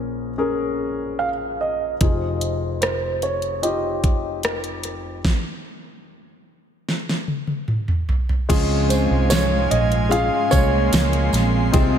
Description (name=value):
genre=pop ballad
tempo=74 BPM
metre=4/4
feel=straight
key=unclear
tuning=A4 = 440 Hz
part: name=warm grand piano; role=accompaniment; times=0.0-12.0 s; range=F1 to Bb4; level=-24 LUFS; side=left 4 dB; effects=wide subtle chorus
part: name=dark grand piano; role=melody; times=1.2-11.3 s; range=C5 to F5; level=-24 LUFS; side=right 3 dB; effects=ping-pong delay
part: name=smooth R&B drum kit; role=drums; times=2.0-11.9 s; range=crash cymbal, hi-hat, kick drum, rim click, snare drum, toms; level=-22 LUFS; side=equal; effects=none
part: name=rich studio cello section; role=second line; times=8.5-12.0 s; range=Ab2 to C4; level=-28 LUFS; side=left 2 dB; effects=ping-pong delay
part: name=airy breathy pad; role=sustained chords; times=8.8-12.0 s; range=Ab3 to Eb6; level=-27 LUFS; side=right 1 dB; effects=chorus
part: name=picked steel-string acoustic guitar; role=arpeggios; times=8.5-12.0 s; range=C3 to F4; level=-28 LUFS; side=right 7 dB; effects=wide subtle chorus
part: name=vintage muted fingered electric bass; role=bass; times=8.5-12.0 s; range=Bb1 to Db2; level=-21 LUFS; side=right 1 dB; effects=none
part: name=tambourine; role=percussion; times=8.5-11.9 s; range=none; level=-36 LUFS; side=right 9 dB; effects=none
room=moderate lush hall reverb, RT60 2.7 s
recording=dreamy mix soaked in reverb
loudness=-18 LUFS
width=side -8 dB against mid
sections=0.0-8.5 A section; 8.5-12.0 B section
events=drum fill 6.9-8.5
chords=0.0 Bbm7; 2.0 Fm7; 5.3 N.C.; 8.5 Dbmaj7